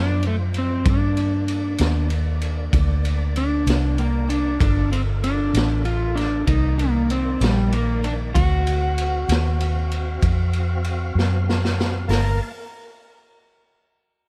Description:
slow blues; 64 BPM (dotted quarters); 12/8; straight; G minor; A4 = 438 Hz
electric slide guitar; melody; 0.0-12.4 s; G3 to Bb4; -27 LUFS; equal; dub echo
tonewheel organ; sustained chords; 0.0-12.5 s; Eb3 to A5; -36 LUFS; equal; slow rotary speaker, overdrive, chorus vibrato
vintage muted fingered electric bass; bass; 0.0-12.4 s; G1 to G2; -23 LUFS; equal
raw garage drum kit; drums; 0.2-12.3 s; hi-hat, kick drum, ride cymbal, snare drum; -28 LUFS; equal
little or no reverb; echo-heavy mix, lossy compression artefacts; -21 LUFS; mono
0.0-12.1 A section; 12.1-14.3 B section
drum fill 11.2-12.1
0.0 D7#9; 0.9 Cm9; 4.6 Gm9; 6.5 Cm9; 8.3 D7#9; 12.1 Gm9
| 0.85 1.79 2.73 3.66 | 4.60 5.54 6.47 7.41 | 8.35 9.28 10.22 11.16 | 12.09

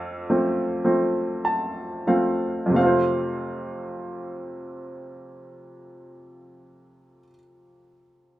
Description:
classical, lyrical solo piano; 28-39 BPM (dotted quarters); 6/8; rubato; F major; A4 = 444 Hz
bright upright piano; solo; 0.0-8.4 s; F2 to A5; -23 LUFS; equal
moderate studio reverb, RT60 0.5 s; minimal, uncompressed stereo recording; -21 LUFS; side -15 dB against mid
0.0-2.8 A section; 2.8-6.9 B section
slowing down 0.0-2.8; upright piano fill 0.8-2.8
0.0 F
0.84 | 2.76 4.86

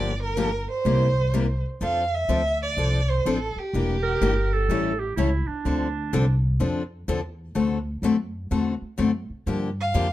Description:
acoustic string swing (jazz manouche); 125 BPM; 4/4; swing 64% on 8ths; F major; A4 = 439 Hz
rich violin; melody; 0.0-5.0, 9.8-10.1 s; G4 to F5; -26 LUFS; right 2 dB
picked steel-string acoustic guitar; accompaniment; 0.0-10.1 s; C3 to A4; -25 LUFS; left 4 dB
upright bass; bass; 0.0-10.1 s; E1 to G2; -26 LUFS; equal
bright clarinet; second line; 4.0-6.4 s; D4 to Bb4; -27 LUFS; right 5 dB
light reverb; dark, warm production, lossy compression artefacts; -22 LUFS; side -14 dB against mid
0.0-1.8 A section; 1.8-10.1 B section
0.0 Gm7; 0.9 C7; 1.8 F6; 3.7 Em7b5; 4.7 A7; 5.6 Dm7; 7.6 D7; 9.5 Gm7
0.38 0.86 1.33 | 1.81 2.29 2.77 3.25 | 3.73 4.21 4.68 5.16 | 5.64 6.12 6.60 7.08 | 7.56 8.03 8.51 8.99 | 9.47 9.95

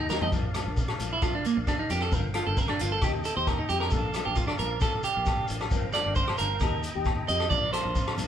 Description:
highlife guitar band; 134 BPM; 4/4; straight; Bb major; A4 = 442 Hz
tonewheel organ; sustained chords; 0.0-8.3 s; D5 to Bb5; -40 LUFS; equal; slow rotary speaker
electric guitar at the edge of break-up; arpeggios; 0.0-8.1 s; Bb3 to Eb5; -28 LUFS; right 4 dB
fingered electric bass; bass; 0.0-8.3 s; G1 to F2; -33 LUFS; equal
nylon-string guitar; accompaniment; 0.1-8.3 s; F3 to G4; -37 LUFS; left 5 dB
vintage drum kit; drums; 0.1-8.3 s; hi-hat, kick drum, rim click, snare drum, toms; -30 LUFS; equal
congas; percussion; 0.1-0.3, 7.5-8.3 s; -39 LUFS; right 1 dB
shekere; percussion; 0.1-8.3 s; -38 LUFS; left 2 dB
agogo bells; percussion; 0.2-8.2 s; -37 LUFS; left 8 dB
moderate stone room reverb, RT60 1.0 s; band playing live in one room; -25 LUFS; side -9 dB against mid
0.3-8.3 A section
drum fill 0.1; clean electric guitar solo 0.3-8.3
0.3 Bb; 2.1 Gm7; 3.0 Eb; 3.9 Bb; 5.7 Gm7; 6.6 Eb; 7.5 Bb
| 0.33 0.78 1.22 1.67 | 2.12 2.57 3.02 3.47 | 3.92 4.37 4.81 5.26 | 5.71 6.16 6.61 7.06 | 7.51 7.96

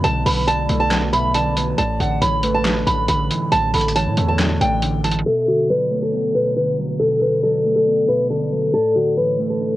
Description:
hip hop, trap; 138 BPM; 4/4; half-time; B minor; A4 = 443 Hz
nylon-string guitar; melody; 0.0-9.8 s; F#4 to B5; -18 LUFS; equal; cassette tape, analog delay
mellow electric guitar; accompaniment; 0.0-9.8 s; A2 to D4; -23 LUFS; right 1 dB
distorted 808-style bass; bass; 0.0-5.2 s; A1 to A2; -22 LUFS; equal; distortion
dusty soul sampler-style drum kit; drums; 0.0-5.5 s; handclaps, hi-hat, snare drum; -23 LUFS; equal; overdrive, cassette tape
hollow clarinet-like synth lead; second line; 0.3-9.8 s; A4 to E5; -30 LUFS; equal; chorus, phaser, analog delay
light reverb; home recording on cassette, low-pass filter; -16 LUFS; side -15 dB against mid
0.0-5.3 A section; 5.3-9.8 B section
filter sweep 5.3-9.8
0.0 Bm7; 1.8 Asus4; 5.3 Bm7; 8.7 Asus4
| 0.04 0.48 0.91 1.35 | 1.78 2.22 2.65 3.08 | 3.52 3.96 4.39 4.82 | 5.26 5.69 6.13 6.56 | 7.00 7.43 7.87 8.30 | 8.74 9.17 9.61

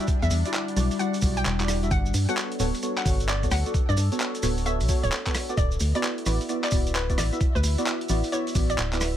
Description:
UK garage, two-step garage; 131 BPM; 4/4; swing 64% on 16ths; D major; A4 = 440 Hz
hollow square pluck; melody; 0.0-8.9 s; B4 to G5; -33 LUFS; left 1 dB; wide subtle chorus, cassette tape, digital delay
soft string machine; sustained chords; 0.0-9.2 s; D4 to E5; -42 LUFS; left 1 dB
deep mellow chord stab; stabs; 0.0-9.1 s; G3 to E5; -30 LUFS; equal; chorus, digital delay
boom bap sampler-style drum kit; drums; 0.0-9.1 s; handclaps, hi-hat, rim click; -31 LUFS; equal; small room ambience
maracas; percussion; 0.0-9.1 s; -36 LUFS; right 4 dB
deep dark ambient pad; texture; 0.0-9.2 s; G3 to F#5; -35 LUFS; left 2 dB; chorus, built-in reverb, sidechain pumping
electronic kick drum; drums; 0.1-8.7 s; -25 LUFS; equal; small room ambience
organ-like FM bass; bass; 0.2-9.2 s; D1 to G2; -25 LUFS; equal
light reverb; vinyl crackle; -22 LUFS; side -11 dB against mid
0.0-9.2 A section
0.0 Em9; 1.9 Gmaj9#11; 5.6 D69
| 0.08 0.54 0.99 1.45 | 1.91 2.37 2.83 3.28 | 3.74 4.20 4.66 5.12 | 5.58 6.03 6.49 6.95 | 7.41 7.87 8.32 8.78

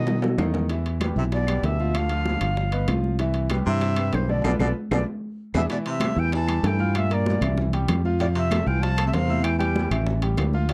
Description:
Afro-Cuban jazz; 192 BPM; 4/4; straight; A minor from 5.7 s; A4 = 440 Hz
breathy bright jazz flute; melody; 0.0-10.7 s; C5 to A5; -32 LUFS; equal
breathy baritone saxophone; second line; 0.0-10.7 s; G2 to F3; -33 LUFS; equal
clear concert grand piano; accompaniment; 0.0-10.7 s; D3 to F6; -33 LUFS; equal
fretless electric bass; bass; 0.0-10.7 s; G1 to B2; -26 LUFS; equal
bongos; percussion; 0.1-10.7 s; -36 LUFS; equal
congas; percussion; 0.1-10.7 s; -34 LUFS; equal
timbales; percussion; 0.1-10.7 s; -35 LUFS; equal
claves; percussion; 0.4-10.5 s; -41 LUFS; equal
little or no reverb; dry, close 1970s-style studio recording; -24 LUFS; mono
0.0-5.7 A section; 5.7-10.7 B section
drum fill 0.0-0.7, 4.8-5.7; band accent 4.4-5.7
0.0 B7; 0.7 Em7; 1.9 Dm; 2.6 Gaug7; 3.2 Cmaj9; 4.4 Bm7b5; 5.1 E7; 5.7 Am7; 6.9 Gm7; 7.6 C; 8.2 Fmaj7; 9.4 Emadd11; 10.1 A5
0.07 0.39 | 0.70 1.01 1.32 1.63 | 1.95 2.26 2.57 2.88 | 3.19 3.51 3.82 4.13 | 4.45 4.76 5.07 5.38 | 5.70 6.01 6.32 6.63 | 6.95 7.26 7.57 7.88 | 8.20 8.51 8.82 9.13 | 9.45 9.76 10.07 10.39 | 10.70

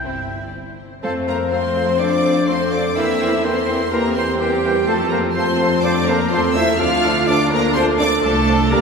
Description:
quick classical-period movement for symphony orchestra; 125 BPM; 4/4; straight; F major; A4 = 442 Hz
warm studio violin section; melody; 0.0-8.8 s; C5 to F6; -26 LUFS; left 1 dB
clear oboe; second line; 0.0-8.8 s; C5 to G5; -29 LUFS; right 1 dB
rich studio violin section; second line; 0.0-8.8 s; E4 to F5; -27 LUFS; left 3 dB
rich studio viola section; accompaniment; 0.0-8.8 s; G3 to D4; -25 LUFS; equal
rich studio double bass section; bass; 0.0-8.8 s; G1 to F2; -25 LUFS; equal
warm studio cello section; bass; 0.0-8.8 s; G3 to F4; -24 LUFS; right 1 dB
mellow clarinet; second line; 1.0-8.8 s; G4 to Bb4; -30 LUFS; left 2 dB
mellow hollow flute section; second line; 1.0-8.8 s; F5 to Bb5; -30 LUFS; left 3 dB
mellow bassoon; accompaniment; 1.0-8.8 s; E3 to G3; -28 LUFS; right 1 dB
dark French horn section; sustained chords; 1.0-8.8 s; F4 to C5; -22 LUFS; equal
mellow trumpet; stabs; 1.0-8.8 s; G4 to F5; -24 LUFS; equal
wet church reverb, RT60 3.5 s; recorded in a church or concert hall; -15 LUFS; side -5 dB against mid
0.0-1.0 A section; 1.0-8.8 B section
0.0 C; 1.0 F; 3.0 C7/E; 4.9 F; 6.8 Dm
0.04 0.54 | 1.03 1.52 2.00 2.48 | 2.97 3.45 3.93 4.41 | 4.89 5.37 5.84 6.33 | 6.80 7.28 7.76 8.24 | 8.72

